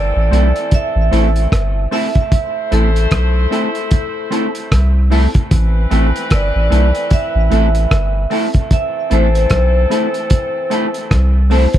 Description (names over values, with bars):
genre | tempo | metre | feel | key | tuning
roots reggae | 75 BPM | 4/4 | swing 59% on 16ths | A minor | A4 = 439 Hz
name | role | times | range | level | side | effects
vibraphone with hard mallets | melody | 0.0-11.8 s | A4 to E5 | -20 LUFS | right 1 dB | tape echo
clear horn section | second line | 0.0-11.5 s | E3 to C5 | -25 LUFS | left 2 dB | tape echo
soft dub sub bass | bass | 0.0-11.7 s | G1 to C2 | -13 LUFS | equal | none
clean electric guitar | accompaniment | 0.3-11.7 s | A3 to A4 | -22 LUFS | right 1 dB | tape echo
filtered dub chord stab | stabs | 0.3-11.7 s | C4 to A4 | -24 LUFS | left 4 dB | chorus
cloth-damped thuddy drum kit | drums | 0.3-11.8 s | hi-hat, kick drum, rim click | -16 LUFS | equal | none
room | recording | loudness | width
light reverb | echo-heavy mix | -12 LUFS | side -12 dB against mid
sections
0.0-11.8 A section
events
none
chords
0.0 Am